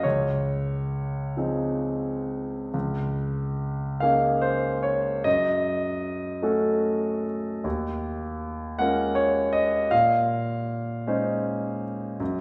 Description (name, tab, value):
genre	classical, impressionist solo piano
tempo	41-53 BPM (dotted quarters)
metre	6/8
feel	rubato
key	Db major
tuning	A4 = 440 Hz
part	clear concert grand piano	solo	0.0-12.4 s	Db2 to Gb5	-26 LUFS	equal	none
room	wet recital hall reverb, RT60 1.6 s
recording	heard from further back in the room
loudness	-26 LUFS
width	mono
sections	0.0-2.7 A section; 2.7-12.4 A section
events	none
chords	0.0 Dbmaj9; 2.7 Dbsus2; 5.3 Gbm6; 7.6 Eb9sus4; 9.9 Bbm11